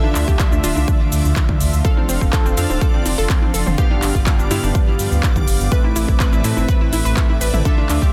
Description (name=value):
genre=progressive house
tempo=124 BPM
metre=4/4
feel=straight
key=A minor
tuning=A4 = 440 Hz
part: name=rich symphonic string section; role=sustained chords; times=0.0-8.1 s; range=C3 to E5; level=-30 LUFS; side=equal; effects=sidechain pumping
part: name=analog pluck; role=arpeggios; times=0.0-8.1 s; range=C4 to B4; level=-28 LUFS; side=equal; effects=chorus, vintage 12-bit sampler grit, sidechain pumping, digital delay
part: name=chorused polysynth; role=stabs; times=0.0-8.1 s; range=G2 to F5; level=-26 LUFS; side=equal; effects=sidechain pumping, digital delay
part: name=electronic congas and toms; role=percussion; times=0.0-7.9 s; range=none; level=-30 LUFS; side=equal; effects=overdrive, sidechain pumping on perc, sidechain pumping on toms
part: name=backwards swelling texture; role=texture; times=0.0-8.1 s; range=D5 to D6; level=-38 LUFS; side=equal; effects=none
part: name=saturated sub bass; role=bass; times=0.2-8.1 s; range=D1 to A2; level=-22 LUFS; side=equal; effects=sidechain pumping
part: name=big-room dance drum kit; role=drums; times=0.2-8.1 s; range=handclaps, hi-hat, shaker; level=-28 LUFS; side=equal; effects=overdrive, sidechain pumping on perc, sidechain pumping on hats
part: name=electronic kick drum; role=drums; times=0.3-8.1 s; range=none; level=-18 LUFS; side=equal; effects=overdrive
room=little or no reverb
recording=dense, heavily limited modern master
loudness=-17 LUFS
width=mono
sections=0.0-8.1 A section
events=none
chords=0.0 Dmadd9; 1.8 F6; 3.8 G7; 5.7 Amadd9